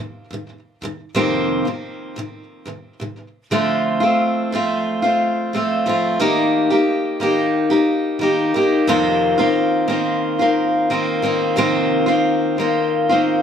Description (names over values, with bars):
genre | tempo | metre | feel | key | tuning
pop | 89 BPM | 4/4 | straight | unclear | A4 = 440 Hz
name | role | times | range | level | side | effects
picked steel-string acoustic guitar | solo | 0.0-13.4 s | F2 to G4 | -16 LUFS | equal | digital delay
room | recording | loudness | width
moderate small room reverb, RT60 0.6 s | none | -16 LUFS | side -8 dB against mid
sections
0.0-3.5 A section; 3.5-13.4 B section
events
none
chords
0.0 F7sus4; 3.5 Dm7; 6.2 Eb; 8.9 F7sus4